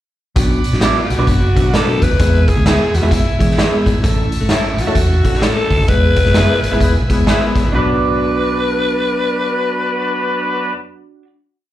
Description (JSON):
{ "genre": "uptempo 1960s-style soul", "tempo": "130 BPM", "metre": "4/4", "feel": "swing 62% on 8ths", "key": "B dorian", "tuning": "A4 = 440 Hz", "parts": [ { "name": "bell-like tine electric piano", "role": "accompaniment", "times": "0.4-10.7 s", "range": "F#3 to A4", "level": "-21 LUFS", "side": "left 2 dB", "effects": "medium stereo tremolo, slapback echo" }, { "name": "bright tonewheel organ", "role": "sustained chords", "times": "0.4-10.7 s", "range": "D4 to E6", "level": "-28 LUFS", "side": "equal", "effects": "slow rotary speaker, overdrive" }, { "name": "vintage muted fingered electric bass", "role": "bass", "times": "0.4-10.7 s", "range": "E1 to E3", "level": "-17 LUFS", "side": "equal", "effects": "none" }, { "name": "raw garage drum kit", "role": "drums", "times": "0.4-7.6 s", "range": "hi-hat, kick drum, snare drum", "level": "-16 LUFS", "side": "equal", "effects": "none" }, { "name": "raspy alto saxophone", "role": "melody", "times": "0.8-10.7 s", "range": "E4 to B4", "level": "-20 LUFS", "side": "left 2 dB", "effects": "slapback echo" }, { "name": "electric guitar through a small old amp", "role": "stabs", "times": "0.8-11.3 s", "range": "D4 to E5", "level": "-22 LUFS", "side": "right 4 dB", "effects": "lush chorus, slapback echo" }, { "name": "clear horn section", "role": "second line", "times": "6.8-10.7 s", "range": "F#3 to B4", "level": "-22 LUFS", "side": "left 1 dB", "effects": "slapback echo" } ], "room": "light reverb", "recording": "live gig heard through the venue's PA, club reverb", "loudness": "-12 LUFS", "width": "side -13 dB against mid", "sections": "0.4-7.7 verse; 7.7-11.4 final chord", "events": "band accent 5.9-7.7", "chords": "0.4 Bm; 2.2 E; 4.0 A; 5.9 E; 7.7 Bm" }